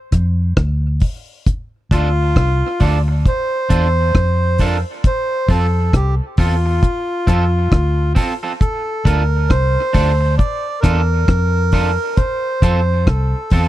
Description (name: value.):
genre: dub reggae.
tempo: 67 BPM.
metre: 4/4.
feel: swing 61% on 16ths.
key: D minor.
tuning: A4 = 440 Hz.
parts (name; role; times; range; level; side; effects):
vintage muted fingered electric bass; bass; 0.1-13.7 s; C2 to F2; -16 LUFS; equal; none.
deep reggae drum kit; drums; 0.1-13.7 s; hi-hat, kick drum, rim click; -16 LUFS; equal; none.
melodica; melody; 1.9-13.7 s; F4 to D5; -20 LUFS; right 1 dB; tape echo.
electric guitar at the edge of break-up; accompaniment; 1.9-13.7 s; C4 to A4; -25 LUFS; right 4 dB; vibrato effect, tape echo.
room: little or no reverb.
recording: dry, close 1970s-style studio recording.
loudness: -14 LUFS.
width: side -14 dB against mid.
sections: 0.0-13.7 A section.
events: break 0.0-1.5.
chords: 0.0 Dm; 12.2 F.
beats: 0.57 | 1.47 2.36 3.25 4.14 | 5.04 5.93 6.82 7.72 | 8.61 9.50 10.39 11.29 | 12.18 13.07.